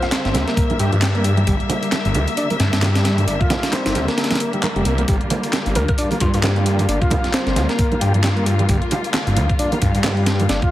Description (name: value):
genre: breakbeat, breaks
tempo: 133 BPM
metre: 4/4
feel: swing 57% on 16ths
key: G dorian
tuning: A4 = 442 Hz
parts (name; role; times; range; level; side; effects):
- glassy wavetable pluck; melody; 0.0-0.2, 5.8-6.4 s; F4 to F5; -28 LUFS; left 1 dB; chorus, small speaker sound, dub echo
- dark symphonic string section; sustained chords; 0.0-10.7 s; D3 to E5; -24 LUFS; left 2 dB; sidechain pumping
- tonewheel organ; riff; 0.0-10.7 s; F3 to G4; -24 LUFS; equal; chorus vibrato, tube saturation, dub echo
- breakbeat sampler-style drum kit; drums; 0.0-10.7 s; hi-hat, kick drum, snare drum; -21 LUFS; equal; none
- garage drum kit; drums; 0.0-10.7 s; handclaps, hi-hat; -28 LUFS; left 1 dB; none
- phased detuned saw bass; bass; 0.2-10.6 s; F1 to G2; -18 LUFS; equal; phaser, tube saturation
- congas; percussion; 0.3-10.5 s; none; -27 LUFS; right 3 dB; none
room: light reverb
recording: heavily compressed radio sound, multiband compression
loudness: -16 LUFS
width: side -14 dB against mid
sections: 0.0-10.7 A section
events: none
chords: 0.0 Gm7